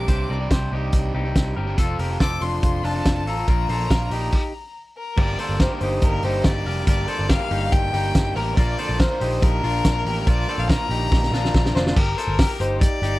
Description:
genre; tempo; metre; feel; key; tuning
jangly indie pop; 141 BPM; 4/4; straight; unclear; A4 = 440 Hz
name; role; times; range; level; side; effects
rich violin; melody; 0.0-13.2 s; Bb4 to D6; -27 LUFS; left 3 dB; slapback echo
crunchy overdriven guitar; accompaniment; 0.0-12.0 s; G2 to Bb4; -31 LUFS; right 6 dB; none
electric guitar through a small old amp; arpeggios; 0.0-13.2 s; D4 to D5; -28 LUFS; left 3 dB; slapback echo
vintage muted picked electric bass; bass; 0.0-13.2 s; F1 to C2; -25 LUFS; equal; none
loose indie drum kit; drums; 0.1-13.1 s; crash cymbal, hi-hat, kick drum, snare drum; -21 LUFS; equal; none
room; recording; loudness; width
little or no reverb; dry, close 1970s-style studio recording; -19 LUFS; side -18 dB against mid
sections
0.0-5.2 A section; 5.2-12.0 B section; 12.0-13.2 C section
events
stop 4.3-5.2; drum fill 11.1-12.0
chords
0.0 Cmadd9; 1.8 F; 3.5 Bb; 5.2 Gm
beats
| 0.08 0.51 0.93 1.36 | 1.78 2.21 2.63 3.06 | 3.48 3.90 4.33 4.75 | 5.18 5.60 6.03 6.45 | 6.87 7.30 7.72 8.15 | 8.57 8.99 9.42 9.84 | 10.27 10.69 11.12 11.54 | 11.96 12.39 12.81

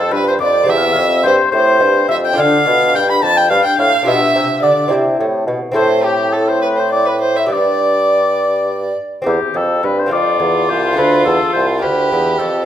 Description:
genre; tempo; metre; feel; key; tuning
classical, baroque-style sonata movement with continuo; 70 BPM (dotted quarters); 6/8; straight; C major; A4 = 440 Hz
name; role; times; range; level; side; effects
warm oboe; melody; 0.0-12.7 s; G4 to B5; -17 LUFS; left 5 dB; none
warm violin; second line; 0.0-12.7 s; F4 to B5; -17 LUFS; right 4 dB; none
lute; accompaniment; 0.0-12.6 s; D2 to C5; -21 LUFS; left 1 dB; none
warm bassoon; bass; 0.0-12.7 s; C2 to D3; -16 LUFS; right 1 dB; none
room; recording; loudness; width
moderate recital hall reverb, RT60 1.3 s; none; -12 LUFS; side -10 dB against mid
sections
0.0-9.3 A section; 9.3-12.7 B section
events
none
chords
0.0 F; 0.7 C/E; 2.4 Dm; 4.1 G7/B; 4.9 C; 5.8 Am; 7.5 G; 9.3 C/E; 10.1 F; 11.0 Dm; 11.8 G7/D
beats
| 0.69 1.54 | 2.38 3.23 | 4.07 4.91 | 5.75 6.62 | 7.50 8.38 | 9.26 10.11 | 10.97 11.83

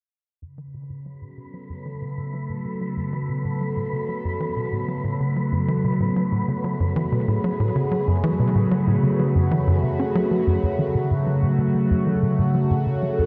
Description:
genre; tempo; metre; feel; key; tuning
ambient, sequencer-driven space music; 94 BPM; 4/4; straight; F# minor; A4 = 440 Hz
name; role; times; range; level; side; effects
phased analog pad; sustained chords; 0.4-13.3 s; C#3 to A4; -25 LUFS; equal; phaser, chorus
tight sequencer bass; riff; 0.4-13.3 s; F#2 to C#4; -26 LUFS; equal; tape echo
wind-like tuned noise texture; texture; 1.5-10.6 s; B3 to B4; -37 LUFS; equal; built-in reverb
room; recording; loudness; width
wet huge ambient reverb, RT60 8.3 s; dark, warm production; -22 LUFS; mono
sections
0.4-10.6 A section; 10.6-13.3 B section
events
fade-in on analog synth bass 0.4-10.6; fade-in on synth texture 0.4-10.6; filter sweep on analog synth pad 0.4-10.6; filter sweep on analog synth bass 10.6-13.3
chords
0.4 F#m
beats
| 0.42 1.06 1.70 2.33 | 2.97 3.61 4.25 4.89 | 5.53 6.17 6.80 7.44 | 8.08 8.72 9.36 9.99 | 10.63 11.27 11.91 12.55 | 13.19

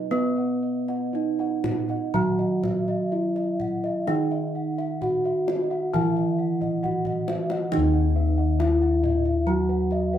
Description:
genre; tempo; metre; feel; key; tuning
Javanese gamelan; 58-68 BPM; 4/4; straight; unclear; A4 = 439 Hz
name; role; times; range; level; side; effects
gamelan-type bronze metallophone; melody; 0.0-10.2 s; Cb4 to Gb4; -26 LUFS; right 1 dB; none
gamelan-type bronze metallophone; accompaniment; 0.0-10.2 s; Eb3 to Cb4; -28 LUFS; right 2 dB; none
gamelan-type bossed gongs; arpeggios; 0.0-10.2 s; Cb5 to Gb5; -35 LUFS; left 3 dB; none
gamelan-type bronze metallophone; arpeggios; 0.0-10.2 s; Cb5 to Gb5; -36 LUFS; right 2 dB; none
gamelan-type bossed gongs; bass; 0.0-10.2 s; Eb2 to Cb5; -28 LUFS; left 2 dB; none
kendang; percussion; 0.1-10.0 s; none; -33 LUFS; left 4 dB; none
room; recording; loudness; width
moderate studio ambience, RT60 0.5 s; band playing live in one room; -22 LUFS; side -10 dB against mid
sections
0.0-7.7 A section; 7.7-10.2 B section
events
drum fill 6.6-7.7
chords
none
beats
| 0.11 1.14 2.14 3.12 | 4.08 5.02 5.94 6.84 | 7.72 8.60 9.48

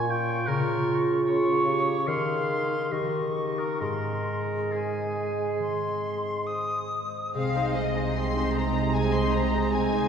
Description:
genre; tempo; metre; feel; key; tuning
classical; 65-78 BPM; 4/4; rubato; Ab major; A4 = 440 Hz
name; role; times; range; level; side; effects
mellow clarinet; second line; 0.0-10.1 s; F4 to Ab4; -31 LUFS; right 1 dB; none
silver concert flute; second line; 0.0-10.1 s; Eb5 to Eb6; -33 LUFS; left 2 dB; none
warm oboe; second line; 0.0-10.1 s; Ab4 to Ab5; -33 LUFS; right 2 dB; none
mellow bassoon; accompaniment; 0.0-10.1 s; Bb2 to Ab3; -31 LUFS; right 2 dB; none
concert harp; arpeggios; 0.0-10.1 s; Ab2 to Ab5; -33 LUFS; left 2 dB; none
muted symphonic viola section; accompaniment; 7.3-10.1 s; C4 to C5; -32 LUFS; right 1 dB; none
muted symphonic double bass section; bass; 7.3-10.1 s; C2; -31 LUFS; right 1 dB; none
muted symphonic violin section; melody; 7.4-10.1 s; Eb5 to C6; -32 LUFS; left 2 dB; none
muted symphonic violin section; second line; 7.4-10.1 s; Ab4 to Eb5; -37 LUFS; left 1 dB; none
dark French horn section; sustained chords; 7.4-10.1 s; Ab3 to C4; -30 LUFS; equal; none
muted symphonic cello section; bass; 7.4-10.1 s; C3; -32 LUFS; right 5 dB; none
room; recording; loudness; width
wet concert hall reverb, RT60 2.1 s; heard from further back in the room; -24 LUFS; side -7 dB against mid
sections
0.0-7.3 A section; 7.3-10.1 B section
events
none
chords
0.5 Bbm/Db; 2.1 Ab/Eb; 2.9 Eb9; 3.8 Ab; 7.3 Ab/C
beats
| 0.47 1.25 2.08 2.92 | 3.81 4.72 5.59 6.47 | 7.35 8.16 8.94 9.72

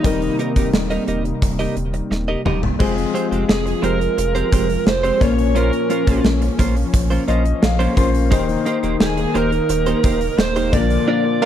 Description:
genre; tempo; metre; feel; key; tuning
1980s-style pop; 87 BPM; 4/4; straight; unclear; A4 = 440 Hz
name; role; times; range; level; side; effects
bluesy overdriven lead guitar; melody; 0.0-11.5 s; Eb4 to D5; -22 LUFS; right 5 dB; distortion, tape echo
clear grand piano; accompaniment; 0.0-11.5 s; Bb2 to C6; -23 LUFS; left 9 dB; none
brassy analog pad; sustained chords; 0.0-11.5 s; C3 to F4; -25 LUFS; equal; chorus
direct-recorded clean electric guitar; riff; 0.0-11.5 s; Ab3 to Eb5; -24 LUFS; right 4 dB; lush chorus, tape echo
saturated sub bass; bass; 0.0-11.0 s; Eb1 to Bb1; -22 LUFS; equal; none
gated 80s drum kit; drums; 0.0-11.1 s; crash cymbal, hi-hat, kick drum, snare drum, toms; -20 LUFS; equal; none
funky polysynth comp; stabs; 11.4-11.5 s; D4 to Bb4; -15 LUFS; right 7 dB; chorus
room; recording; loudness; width
little or no reverb; none; -16 LUFS; side -10 dB against mid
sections
0.0-2.8 A section; 2.8-11.5 B section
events
drum fill 2.1-2.8; grand piano fill 6.9-8.3; band accent 11.1-11.5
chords
0.0 Cm7/Eb; 2.8 Fmadd9; 5.2 Bbmadd9; 8.3 Eb6; 10.7 Bb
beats
| 0.04 0.73 1.42 2.11 | 2.80 3.49 4.18 4.87 | 5.56 6.25 6.94 7.63 | 8.32 9.01 9.70 10.39 | 11.08

